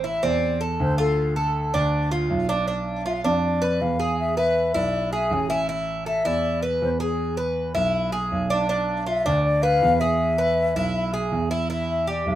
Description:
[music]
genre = latin, Cuban son and guajira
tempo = 160 BPM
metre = 4/4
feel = straight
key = A harmonic minor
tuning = A4 = 441 Hz
[part]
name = Cuban tres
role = arpeggios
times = 0.0-12.4 s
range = C4 to B4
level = -25 LUFS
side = right 1 dB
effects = none
[part]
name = warm concert grand piano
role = bass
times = 0.0-12.4 s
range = A1 to F2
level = -25 LUFS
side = right 2 dB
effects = none
[part]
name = mellow hollow silver concert flute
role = melody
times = 0.1-12.4 s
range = G#4 to G#5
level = -24 LUFS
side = left 3 dB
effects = none
[sound]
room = moderate studio reverb, RT60 0.7 s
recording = minimal, uncompressed stereo recording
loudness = -21 LUFS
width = side -12 dB against mid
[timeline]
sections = 0.0-11.7 A section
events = none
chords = 0.0 Am; 1.2 Dm; 2.7 Bdim; 4.2 Asus2; 7.2 E; 8.7 Bdim; 10.2 E; 11.7 Em

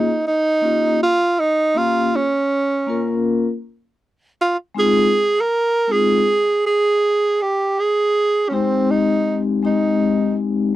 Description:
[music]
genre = hip hop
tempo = 80 BPM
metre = 4/4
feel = swing 65% on 16ths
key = unclear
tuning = A4 = 440 Hz
[part]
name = breathy tenor saxophone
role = melody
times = 0.0-10.4 s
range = C4 to Bb4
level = -17 LUFS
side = right 2 dB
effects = none
[part]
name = vibraphone with soft mallets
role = accompaniment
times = 0.0-10.7 s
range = Ab3 to Bb4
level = -19 LUFS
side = left 4 dB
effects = none
[sound]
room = light reverb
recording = dry, close 1970s-style studio recording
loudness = -16 LUFS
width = side -14 dB against mid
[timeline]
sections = 0.0-10.8 A section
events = none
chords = 0.0 Eb7sus2; 4.8 Abmaj7

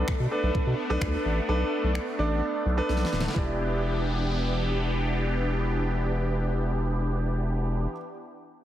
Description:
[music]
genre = dance-pop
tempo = 128 BPM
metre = 4/4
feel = straight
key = E minor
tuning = A4 = 444 Hz
[part]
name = clear grand piano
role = accompaniment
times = 0.0-8.0 s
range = D4 to D5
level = -31 LUFS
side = right 1 dB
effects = sidechain pumping
[part]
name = filtered supersaw swell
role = sustained chords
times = 0.0-7.9 s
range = E3 to G4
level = -31 LUFS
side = equal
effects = phaser, sidechain pumping
[part]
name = saturated sub bass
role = bass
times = 0.0-7.9 s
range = D1 to B2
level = -27 LUFS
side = equal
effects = sidechain pumping
[part]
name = smooth R&B drum kit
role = drums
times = 0.1-3.5 s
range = finger snaps, kick drum, snare drum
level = -30 LUFS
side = equal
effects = none
[sound]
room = light reverb, digital ambience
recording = heavily compressed radio sound, multiband compression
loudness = -25 LUFS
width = side -12 dB against mid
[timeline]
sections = 0.0-3.4 A section; 3.4-7.1 B section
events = drum fill 2.9-3.4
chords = 0.0 Bm7; 3.4 Em7

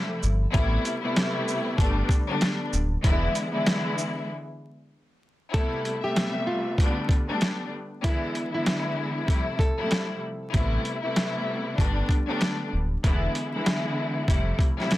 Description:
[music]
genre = hip hop, boom-bap hip-hop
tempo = 96 BPM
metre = 4/4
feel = swing 61% on 16ths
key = A minor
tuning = A4 = 443 Hz
[part]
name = nylon-string guitar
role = melody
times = 0.0-0.1, 5.5-10.1 s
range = E4 to A4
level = -32 LUFS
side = equal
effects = high-pass filter, low-pass filter, tape echo
[part]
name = warm studio string section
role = accompaniment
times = 0.0-15.0 s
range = C3 to E5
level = -28 LUFS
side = left 1 dB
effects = high-pass filter, low-pass filter
[part]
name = sub bass with octave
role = bass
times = 0.2-3.3, 10.5-14.5 s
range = D1 to A1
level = -26 LUFS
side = equal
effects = none
[part]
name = boom bap sampler-style drum kit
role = drums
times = 0.2-15.0 s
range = hi-hat, kick drum, shaker, snare drum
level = -24 LUFS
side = equal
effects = none
[sound]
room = light reverb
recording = dense, heavily limited modern master, vinyl crackle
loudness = -23 LUFS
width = side -16 dB against mid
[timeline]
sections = 0.0-5.5 A section; 5.5-15.0 B section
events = break 4.3-5.5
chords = 0.0 Fmaj7; 0.5 Am7; 1.8 Gadd9; 3.0 E7; 4.3 N.C.; 5.5 Am7; 6.8 Gadd9; 8.0 E7; 9.3 Fmaj7; 10.5 Am7; 11.8 Gadd9; 13.0 E7; 14.3 Fmaj7

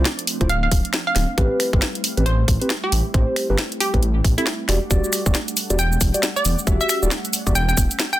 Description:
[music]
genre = UK garage, two-step garage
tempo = 136 BPM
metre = 4/4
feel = swing 61% on 16ths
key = unclear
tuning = A4 = 440 Hz
[part]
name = warm analog pad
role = sustained chords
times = 0.0-8.2 s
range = F3 to F#5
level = -32 LUFS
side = right 1 dB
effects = chorus, sidechain pumping
[part]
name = mellow tine electric piano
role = stabs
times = 0.0-7.5 s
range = C4 to E5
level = -26 LUFS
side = equal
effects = phaser, dub echo
[part]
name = dark detuned saw bass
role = bass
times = 0.0-7.9 s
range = D1 to A1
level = -20 LUFS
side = equal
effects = none
[part]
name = garage drum kit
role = drums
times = 0.1-8.2 s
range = finger snaps, hi-hat, shaker, snare drum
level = -23 LUFS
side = equal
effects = small room ambience
[part]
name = electronic kick drum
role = drums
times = 0.4-7.9 s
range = none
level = -20 LUFS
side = equal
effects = small room ambience
[part]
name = hollow square pluck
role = melody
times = 0.5-8.2 s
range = E4 to G5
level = -25 LUFS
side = right 1 dB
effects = chorus, dub echo
[sound]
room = light reverb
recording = dense, heavily limited modern master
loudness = -17 LUFS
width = side -14 dB against mid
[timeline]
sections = 0.0-8.2 A section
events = none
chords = 0.0 Dm7; 1.4 Am9; 4.7 Em9

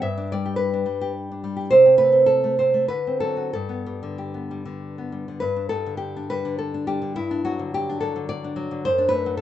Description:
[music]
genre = romantic piece for solo classical guitar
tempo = 92-110 BPM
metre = 3/4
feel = rubato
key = G major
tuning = A4 = 440 Hz
[part]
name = nylon-string guitar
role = solo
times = 0.0-9.4 s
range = F#2 to E5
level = -20 LUFS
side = right 1 dB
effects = none
[sound]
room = light reverb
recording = rough home demo mix, nothing above 8.0 kHz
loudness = -20 LUFS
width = side -11 dB against mid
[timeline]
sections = 0.0-5.4 A section; 5.4-9.4 A section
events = none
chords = 0.0 G; 1.7 Am/C; 2.9 D7; 3.5 G; 7.2 D/G; 8.9 D/F#

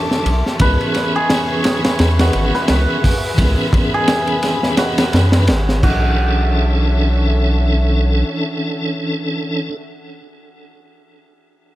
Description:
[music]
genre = trip hop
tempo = 86 BPM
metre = 4/4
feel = swing 57% on 16ths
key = B dorian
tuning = A4 = 440 Hz
[part]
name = hammered dulcimer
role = melody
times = 0.0-10.4 s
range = F#4 to B4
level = -22 LUFS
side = equal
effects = tape echo
[part]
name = tonewheel organ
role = accompaniment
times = 0.0-9.8 s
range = E3 to B4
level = -21 LUFS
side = equal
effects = overdrive, chorus vibrato, fast rotary speaker, tremolo, tape echo
[part]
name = dark studio string section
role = sustained chords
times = 0.0-9.7 s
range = D3 to D6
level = -27 LUFS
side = left 1 dB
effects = vintage 12-bit sampler grit
[part]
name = crunchy breakbeat drum kit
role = drums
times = 0.1-6.0 s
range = crash cymbal, hi-hat, kick drum, ride cymbal, snare drum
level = -18 LUFS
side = equal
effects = none
[part]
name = round analog bass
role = bass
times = 0.3-8.2 s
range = G#1 to F#2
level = -15 LUFS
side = equal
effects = none
[sound]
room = studio reverb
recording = none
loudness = -14 LUFS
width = side -15 dB against mid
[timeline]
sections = 0.0-6.2 A section; 6.2-9.0 B section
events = none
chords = 0.0 Bm11; 0.6 C#m7; 5.8 Bm11

